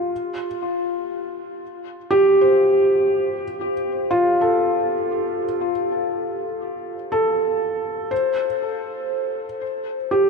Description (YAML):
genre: ambient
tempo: 60 BPM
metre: 4/4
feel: straight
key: unclear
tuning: A4 = 441 Hz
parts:
  - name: felt-muted upright piano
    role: solo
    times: 0.0-10.3 s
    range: F4 to C5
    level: -19 LUFS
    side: equal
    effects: ping-pong delay
room: wet huge ambient reverb, RT60 7.9 s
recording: cassette tape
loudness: -19 LUFS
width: side -4 dB against mid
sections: 0.0-8.1 A section; 8.1-10.3 B section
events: none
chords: 0.1 F